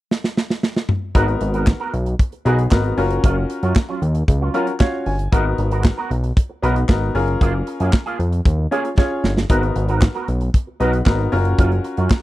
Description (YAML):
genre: early-eighties boogie funk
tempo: 115 BPM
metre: 4/4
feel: straight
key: G# dorian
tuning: A4 = 440 Hz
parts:
  - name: modern studio drum kit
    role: drums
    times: 0.1-12.2 s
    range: handclaps, hi-hat, kick drum, snare drum, toms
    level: -16 LUFS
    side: equal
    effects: none
  - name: clear grand piano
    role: accompaniment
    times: 1.1-12.2 s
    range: B3 to G#5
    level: -22 LUFS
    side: left 2 dB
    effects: none
  - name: electric guitar with an envelope filter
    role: riff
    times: 1.1-12.1 s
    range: F#3 to A#4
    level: -26 LUFS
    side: right 4 dB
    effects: ensemble chorus
  - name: fat analog bass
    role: bass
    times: 1.1-12.1 s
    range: F#1 to F#2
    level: -19 LUFS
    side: equal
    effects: none
room: small room ambience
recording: dry, close 1970s-style studio recording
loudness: -16 LUFS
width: side -16 dB against mid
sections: 0.0-1.2 A section; 1.2-12.2 B section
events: drum fill 0.1-1.2, 9.0-9.5; grand piano fill 4.5-5.3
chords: 0.0 N.C.; 1.2 G#m9; 3.0 D#m9/F#; 5.3 G#m9; 7.2 F#maj9; 9.5 G#m9; 11.3 D#m9/F# (rootless)